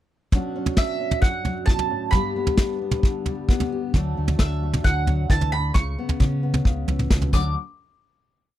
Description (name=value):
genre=indie folk with a building arrangement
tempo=133 BPM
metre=4/4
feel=straight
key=D major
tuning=A4 = 441 Hz
part: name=fingerpicked steel-string acoustic guitar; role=accompaniment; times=0.3-7.6 s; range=F#2 to G4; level=-28 LUFS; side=left 3 dB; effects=none
part: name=soft brush drum kit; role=drums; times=0.3-7.4 s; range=crash cymbal, kick drum, snare drum, toms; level=-20 LUFS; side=equal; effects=none
part: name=mandolin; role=melody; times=0.8-7.5 s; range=E5 to D6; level=-27 LUFS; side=right 4 dB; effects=none
part: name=fingered electric bass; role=bass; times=3.9-7.5 s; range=C#2 to C#3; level=-24 LUFS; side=equal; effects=none
room=little or no reverb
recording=dry, close 1970s-style studio recording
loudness=-20 LUFS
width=side -13 dB against mid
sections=0.3-7.6 verse; 7.6-8.6 final hit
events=none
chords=0.3 Bmadd9; 2.1 G; 3.9 D; 5.8 Aadd9/C#; 7.3 D; 7.6 N.C.